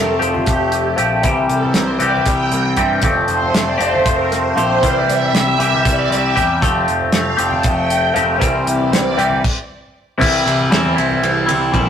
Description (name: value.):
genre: psychedelic rock.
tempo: 234 BPM (eighths).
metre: 7/8.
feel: straight.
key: C mixolydian.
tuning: A4 = 440 Hz.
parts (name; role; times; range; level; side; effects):
phased string machine; sustained chords; 0.0-9.2 s; G5; -20 LUFS; right 3 dB; ensemble chorus, phaser.
twangy electric guitar; riff; 0.0-11.9 s; C3 to G4; -16 LUFS; left 2 dB; phaser.
growling picked electric bass; bass; 0.0-11.9 s; F1 to G2; -23 LUFS; equal; overdrive.
damped 70s drum kit; drums; 0.2-11.9 s; crash cymbal, hi-hat, kick drum, ride cymbal, snare drum; -19 LUFS; right 1 dB; none.
congas; percussion; 0.3-11.9 s; none; -31 LUFS; right 3 dB; none.
room: moderate stone room reverb, RT60 1.2 s.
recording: rough rehearsal-room recording, warm saturation.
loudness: -13 LUFS.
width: side -8 dB against mid.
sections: 0.0-10.2 A section; 10.2-11.9 B section.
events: string machine solo 0.0-10.2; stop 9.4-10.2.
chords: 0.0 Fadd9; 1.2 C; 3.0 Fadd9; 4.8 C; 6.6 Fadd9; 8.4 C.